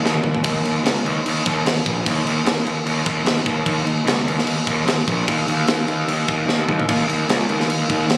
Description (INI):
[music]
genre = heavy metal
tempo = 149 BPM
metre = 4/4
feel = straight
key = unclear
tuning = A4 = 439 Hz
[part]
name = fuzz picked electric bass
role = bass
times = 0.0-8.2 s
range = Bb1 to Eb2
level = -19 LUFS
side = equal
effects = overdrive
[part]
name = tight metal drum kit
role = drums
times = 0.1-8.2 s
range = crash cymbal, kick drum, snare drum, toms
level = -21 LUFS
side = equal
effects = none
[sound]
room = little or no reverb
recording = recorded on a phone in the room, club reverb, compression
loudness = -17 LUFS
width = side -23 dB against mid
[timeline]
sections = 0.4-8.2 A section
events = drum fill 0.0-0.4, 6.5-6.9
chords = none